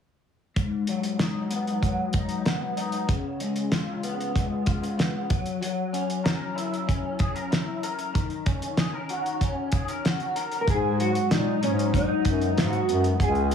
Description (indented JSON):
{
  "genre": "indie pop, bedroom pop",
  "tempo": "95 BPM",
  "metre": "4/4",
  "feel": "straight",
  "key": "G# minor",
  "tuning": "A4 = 440 Hz",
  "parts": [
    { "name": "electric guitar through a small old amp", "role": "accompaniment", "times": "0.6-13.5 s", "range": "G#2 to A#4", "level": "-28 LUFS", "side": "left 3 dB", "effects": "ensemble chorus, vibrato effect" },
    { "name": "cloth-damped thuddy drum kit", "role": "drums", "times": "0.6-13.5 s", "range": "hi-hat, kick drum, snare drum", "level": "-26 LUFS", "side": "equal", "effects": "none" },
    { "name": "mellow electric guitar", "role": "melody", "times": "10.6-13.5 s", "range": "C#4 to A#4", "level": "-25 LUFS", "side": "equal", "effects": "ensemble chorus, tape echo" },
    { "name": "warm bass clarinet", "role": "bass", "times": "10.7-13.5 s", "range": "C#2 to A#2", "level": "-26 LUFS", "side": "left 1 dB", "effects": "none" }
  ],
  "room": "moderate studio reverb, RT60 0.6 s",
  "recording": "heavily compressed radio sound, multiband compression, studio reverb",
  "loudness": "-24 LUFS",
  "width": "side -7 dB against mid",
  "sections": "0.6-10.7 A section; 10.7-13.5 B section",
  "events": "none",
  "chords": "0.6 G#m7; 3.1 C#7; 5.3 F#7; 8.1 D#m7; 10.7 G#m7",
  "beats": "| 0.56 1.20 1.83 2.46 | 3.09 3.72 4.36 4.99 | 5.62 6.25 6.88 7.52 | 8.15 8.78 9.41 10.04 | 10.68 11.31 11.94 12.57 | 13.20"
}